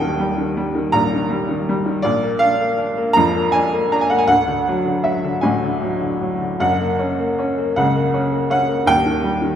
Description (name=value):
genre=classical, lyrical solo piano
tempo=53 BPM (dotted quarters)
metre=6/8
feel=uneven beats, rubato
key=unclear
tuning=A4 = 435 Hz
part: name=bright upright piano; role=solo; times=0.0-9.6 s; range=D1 to A#5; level=-16 LUFS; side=equal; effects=none
room=wet recital hall reverb, RT60 1.8 s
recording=recorded in a church or concert hall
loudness=-16 LUFS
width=side -9 dB against mid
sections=0.0-9.6 A section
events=none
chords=0.0 D#; 2.0 A#; 4.3 D; 6.6 F#; 8.9 D#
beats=0.94 | 2.04 3.16 | 4.29 5.45 | 6.62 7.77 | 8.88